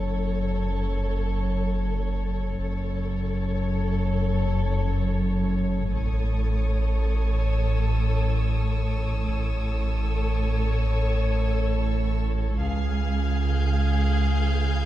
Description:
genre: cinematic, suspense film score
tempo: free time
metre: none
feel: none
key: F# minor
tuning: A4 = 440 Hz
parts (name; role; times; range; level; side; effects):
- warm studio violin section; second line; 0.0-14.9 s; G#4 to E#5; -32 LUFS; left 2 dB; none
- rich chamber cello section; bass; 0.0-14.9 s; C#2 to A2; -31 LUFS; equal; none
- rich symphonic double bass section; bass; 0.0-14.9 s; F#1 to C#2; -31 LUFS; equal; none
- warm sub bass; drone; 0.0-14.9 s; F#1 to C#2; -25 LUFS; equal; none
- rich chamber violin section; texture; 5.9-14.9 s; C#6 to G#6; -38 LUFS; left 3 dB; none
room: wet scoring stage reverb, RT60 1.9 s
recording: heard from further back in the room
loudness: -22 LUFS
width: side -13 dB against mid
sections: 0.0-14.9 A section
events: none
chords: 0.0 F#m; 5.9 A; 12.6 C#

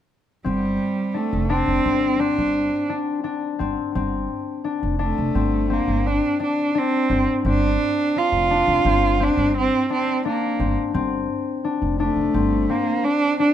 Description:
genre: contemporary instrumental, chamber music in an uneven meter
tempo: 172 BPM (eighths)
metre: 5/8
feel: straight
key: G minor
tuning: A4 = 440 Hz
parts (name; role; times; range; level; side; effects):
- concert harp; arpeggios; 0.4-13.5 s; C4 to D4; -23 LUFS; left 6 dB; none
- warm cello; melody; 0.5-13.5 s; G3 to F4; -21 LUFS; right 4 dB; none
- upright bass; bass; 0.5-12.7 s; F1 to G1; -25 LUFS; right 1 dB; none
room: little or no reverb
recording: close, detailed microphones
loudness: -19 LUFS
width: side -10 dB against mid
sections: 0.5-13.5 A section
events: none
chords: 0.5 G7sus4

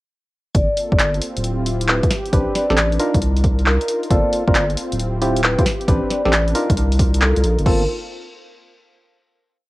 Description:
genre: UK garage, two-step garage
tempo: 135 BPM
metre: 4/4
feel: swing 67% on 16ths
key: unclear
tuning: A4 = 441 Hz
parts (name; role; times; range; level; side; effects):
- warm analog pad; sustained chords; 0.5-7.9 s; Bb3 to B4; -28 LUFS; equal; chorus, sidechain pumping, cassette tape
- saturated sub bass; bass; 0.5-7.9 s; D1 to C2; -19 LUFS; equal; sidechain pumping
- electronic kick drum; drums; 0.5-7.8 s; none; -19 LUFS; equal; cassette tape
- vibraphone with soft mallets; melody; 0.6-7.8 s; A4 to D5; -24 LUFS; equal; cassette tape, tape echo
- punchy analog drum machine; drums; 0.6-7.8 s; crash cymbal, handclaps, hi-hat, snare drum; -22 LUFS; equal; cassette tape
- percussive organ stab; stabs; 2.3-7.8 s; Bb3 to B4; -22 LUFS; equal; chorus, cassette tape, tape echo
room: little or no reverb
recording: home recording on cassette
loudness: -15 LUFS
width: side -19 dB against mid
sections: 0.6-7.7 groove; 7.7-9.4 final chord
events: none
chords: 0.6 Gm11; 1.2 Dm11; 2.1 Am11; 3.0 Cm11; 4.1 Gm11; 4.8 Dm11; 5.7 Am11; 6.6 Cm11; 7.7 Gm11

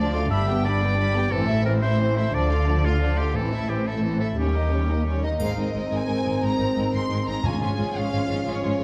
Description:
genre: cinematic, heroic adventure film score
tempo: 118 BPM (dotted quarters)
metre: 12/8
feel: straight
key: Ab major from 5.4 s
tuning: A4 = 440 Hz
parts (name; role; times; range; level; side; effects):
- warm symphonic violin section; melody; 0.0-8.8 s; C5 to C6; -35 LUFS; equal; none
- bright oboe; second line; 0.0-5.2 s; F4 to E5; -31 LUFS; equal; none
- warm symphonic violin section; second line; 0.0-8.8 s; C4 to Bb4; -34 LUFS; equal; none
- dark symphonic viola section; accompaniment; 0.0-8.8 s; E3 to Db4; -32 LUFS; equal; none
- dark symphonic double bass section; bass; 0.0-8.8 s; G1 to Eb2; -29 LUFS; equal; none
- warm symphonic cello section; bass; 0.0-8.8 s; D2 to D3; -30 LUFS; equal; none
- clear trombone section; sustained chords; 5.4-8.8 s; Eb3 to Db4; -30 LUFS; equal; none
- triangle; percussion; 5.4-6.0 s; none; -48 LUFS; equal; none
- timpani; percussion; 7.4-7.9 s; Ab2; -32 LUFS; equal; none
room: moderate recital hall reverb, RT60 1.2 s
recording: dark, warm production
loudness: -23 LUFS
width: mono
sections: 0.0-5.4 A section; 5.4-8.8 B section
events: none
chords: 0.3 G; 1.3 Am; 2.3 Dm; 3.3 Am; 4.4 Eb7; 5.4 Abadd9; 7.4 Db/Ab

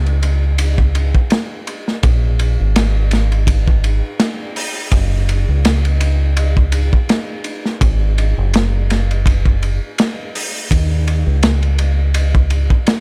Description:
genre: trip hop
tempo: 83 BPM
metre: 4/4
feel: swing 55% on 16ths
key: unclear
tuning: A4 = 440 Hz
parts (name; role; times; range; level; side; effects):
- deep dub fingered electric bass; bass; 0.0-12.7 s; Gb1 to Eb2; -17 LUFS; equal; none
- crunchy breakbeat drum kit; drums; 0.1-13.0 s; hi-hat, kick drum, ride cymbal, snare drum; -19 LUFS; equal; none
room: little or no reverb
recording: none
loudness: -16 LUFS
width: mono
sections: 0.0-13.0 A section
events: none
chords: none

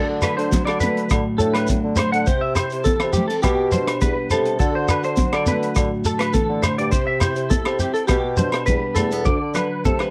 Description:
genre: highlife guitar band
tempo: 103 BPM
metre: 4/4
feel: straight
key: D mixolydian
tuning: A4 = 440 Hz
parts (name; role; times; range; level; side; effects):
- picked steel-string acoustic guitar; accompaniment; 0.0-10.1 s; A2 to G4; -27 LUFS; equal; none
- clean electric guitar; arpeggios; 0.0-10.1 s; G4 to F#5; -26 LUFS; equal; ensemble chorus, slapback echo
- mellow bassoon; bass; 0.0-10.1 s; D2 to D3; -27 LUFS; equal; none
- crunchy breakbeat drum kit; drums; 0.2-10.1 s; hi-hat, kick drum, rim click; -25 LUFS; equal; none
- agogo bells; percussion; 0.2-10.1 s; none; -32 LUFS; equal; none
- congas; percussion; 0.2-10.0 s; none; -29 LUFS; equal; none
- shekere; percussion; 0.2-10.0 s; none; -26 LUFS; equal; none
room: little or no reverb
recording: dry, close 1970s-style studio recording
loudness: -20 LUFS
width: mono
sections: 0.0-9.3 A section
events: none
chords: 0.0 D; 2.3 C; 3.4 G/B; 4.6 D; 6.9 C; 8.1 G/B; 9.3 D

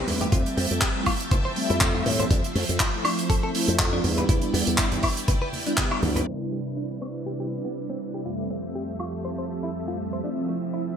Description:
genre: nu-disco, nu disco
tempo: 121 BPM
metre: 4/4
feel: swing 55% on 16ths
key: C major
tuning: A4 = 442 Hz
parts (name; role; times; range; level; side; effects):
- mellow synth brass; accompaniment; 0.0-11.0 s; F2 to E5; -29 LUFS; right 1 dB; chorus, sidechain pumping, ping-pong delay
- string machine, full ensemble; sustained chords; 0.0-11.0 s; C3 to D6; -33 LUFS; right 1 dB; ensemble chorus, sidechain pumping
- direct-recorded clean electric guitar; riff; 0.0-10.8 s; G3 to C5; -34 LUFS; left 1 dB; wide subtle chorus, low-pass filter, ping-pong delay
- slap bass with an envelope filter; bass; 0.1-6.2 s; D2 to A2; -26 LUFS; equal; none
- damped 70s drum kit; drums; 0.1-9.1 s; crash cymbal, handclaps, hi-hat, woodblock; -27 LUFS; right 1 dB; low-pass filter on hats, low-pass filter on cymbals, low-pass filter on snare, low-pass filter on perc, low-pass filter on room, gated reverb
- congas; percussion; 0.1-6.2 s; none; -33 LUFS; right 1 dB; none
- electronic kick drum; drums; 0.3-5.9 s; none; -25 LUFS; equal; none
room: moderate plate reverb, RT60 2.8 s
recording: bright 1980s-style digital production, low-pass filter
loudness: -23 LUFS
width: side -8 dB against mid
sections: 0.0-6.3 A section; 6.3-11.0 B section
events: filter sweep on drum 6.3-11.0; filter sweep on clean electric guitar 6.3-11.0; filter sweep 6.3-11.0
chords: 0.3 Fmaj9; 2.3 Dm7/F (rootless); 4.0 Em7; 6.3 Cmaj9; 8.3 Fmaj9; 10.2 Dm7/F (rootless)

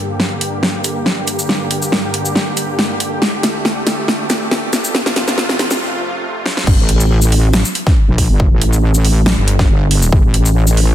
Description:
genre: heavy wobble dubstep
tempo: 139 BPM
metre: 4/4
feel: swing 53% on 16ths, half-time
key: G minor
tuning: A4 = 442 Hz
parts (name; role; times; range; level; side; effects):
- supersaw pad; sustained chords; 0.0-6.7 s; D2 to G4; -20 LUFS; equal; sidechain pumping, low-pass filter
- dubstep drum kit; drums; 0.2-10.9 s; crash cymbal, hi-hat, shaker, snare drum; -17 LUFS; equal; small room ambience
- wobble bass; bass; 6.7-10.9 s; G1 to Bb1; -12 LUFS; equal; chorus, overdrive
- electronic kick drum; drums; 6.7-10.2 s; none; -12 LUFS; equal; small room ambience
room: light reverb, digital ambience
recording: dense, heavily limited modern master, high-pass filter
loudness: -12 LUFS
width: side -12 dB against mid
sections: 0.0-6.7 A section; 6.7-10.9 B section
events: build-up 0.0-6.7; drum fill 0.0-5.8, 6.5; filter sweep on supersaw synth 0.0-6.7; break 5.8-6.7; drop 6.7-10.9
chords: 0.0 Gm; 3.2 Dsus4; 4.9 F; 6.7 N.C.

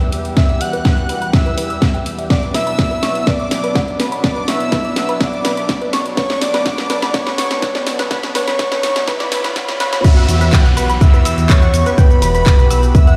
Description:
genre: progressive house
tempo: 124 BPM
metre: 4/4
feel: straight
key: B minor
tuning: A4 = 437 Hz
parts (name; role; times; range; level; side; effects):
- soft octave-layered synth lead; melody; 0.0-13.2 s; B4 to F#5; -24 LUFS; equal; chorus, phaser, sidechain pumping, dub echo
- airy dreamy lead; second line; 0.0-13.2 s; B5 to F#6; -28 LUFS; equal; chorus, sidechain pumping, delay
- lush unison pad; sustained chords; 0.0-13.2 s; E2 to G4; -27 LUFS; equal; chorus, sidechain pumping
- tight sequenced synth; arpeggios; 0.0-13.1 s; B4 to G6; -27 LUFS; equal; chorus, sidechain pumping, delay
- house drum kit; drums; 0.0-13.2 s; crash cymbal, handclaps, hi-hat, shaker, snare drum; -24 LUFS; equal; none
- electronic kick drum; drums; 0.4-13.0 s; none; -14 LUFS; equal; none
- riser and downlifter; sound effects; 5.9-13.2 s; none; -32 LUFS; equal; none
- dark detuned saw bass; bass; 10.3-13.2 s; E1 to E2; -17 LUFS; equal; sidechain pumping
room: moderate huge ambient reverb, RT60 4.1 s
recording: played on a big sound system in a bare room, stone room reverb, high-pass filter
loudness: -15 LUFS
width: mono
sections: 0.0-10.0 A section; 10.0-13.2 B section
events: build-up 0.0-10.0; drum fill 0.0-10.0; filter sweep on synth arpeggio sound 0.0-10.0; filter sweep 0.0-10.0; drop 10.0-13.2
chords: 0.0 Emadd9; 2.3 Bmadd9; 10.0 Emadd9

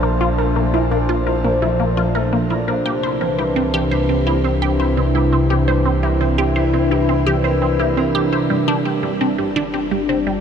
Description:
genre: ambient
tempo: 85 BPM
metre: 4/4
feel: straight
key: unclear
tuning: A4 = 441 Hz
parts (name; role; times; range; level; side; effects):
- sweeping resonant pad; sustained chords; 0.0-10.4 s; Bb2 to A5; -19 LUFS; left 1 dB; chorus, phaser, shimmer reverb
- concert harp; arpeggios; 0.0-10.4 s; E3 to Bb4; -23 LUFS; right 1 dB; auto-pan, shimmer reverb, tape echo
- resonant blip pluck; riff; 0.0-10.4 s; G3 to C5; -21 LUFS; right 1 dB; phaser, shimmer reverb, tape echo
- warm sub bass; bass; 0.0-10.4 s; G1 to C2; -23 LUFS; equal; none
room: wet huge ambient reverb, RT60 7.5 s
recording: none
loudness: -15 LUFS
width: side -7 dB against mid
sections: 0.0-8.5 A section; 8.5-10.4 B section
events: filter sweep on synth arpeggio sound 0.0-8.5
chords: 0.0 Bbmaj7; 2.9 C7; 8.5 Gm7

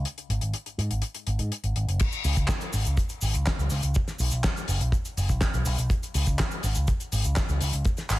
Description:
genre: italo disco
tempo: 123 BPM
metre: 4/4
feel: straight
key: unclear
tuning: A4 = 440 Hz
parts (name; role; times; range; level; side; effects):
- picked electric bass with an envelope filter; bass; 0.0-8.2 s; F#1 to G#2; -26 LUFS; equal; tube saturation
- damped 70s drum kit; drums; 0.1-8.2 s; cabasa, crash cymbal, handclaps, hi-hat, snare drum; -30 LUFS; left 2 dB; gated reverb
- kick drum; drums; 2.0-8.0 s; none; -26 LUFS; equal; none
room: little or no reverb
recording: none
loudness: -24 LUFS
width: side -17 dB against mid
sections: 0.0-2.0 A section; 2.0-8.2 B section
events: none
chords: none

